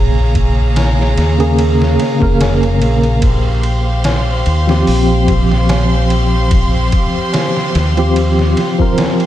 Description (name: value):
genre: trip hop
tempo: 73 BPM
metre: 4/4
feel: swing 54% on 16ths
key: unclear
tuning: A4 = 438 Hz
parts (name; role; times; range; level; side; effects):
- tine electric piano; accompaniment; 0.0-9.3 s; Db3 to Bb4; -16 LUFS; equal; medium stereo tremolo, tape echo
- warm studio violin section; sustained chords; 0.0-9.3 s; G4 to C6; -20 LUFS; equal; none
- deep dub fingered electric bass; bass; 0.0-8.5 s; F1 to Eb2; -14 LUFS; equal; none
- trip hop sampler-style drum kit; drums; 0.4-9.3 s; hi-hat, kick drum, ride cymbal, snare drum; -18 LUFS; equal; studio reverb
- tabla; percussion; 0.8-9.2 s; none; -28 LUFS; left 1 dB; none
room: moderate lush hall reverb, RT60 2.7 s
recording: dreamy mix soaked in reverb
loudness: -11 LUFS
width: side -12 dB against mid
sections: 0.0-9.3 A section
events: none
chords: 0.0 Bbm7; 3.2 Fsus2/Bb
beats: 0.77 1.59 2.41 | 3.23 4.06 4.88 5.70 | 6.52 7.34 8.17 8.99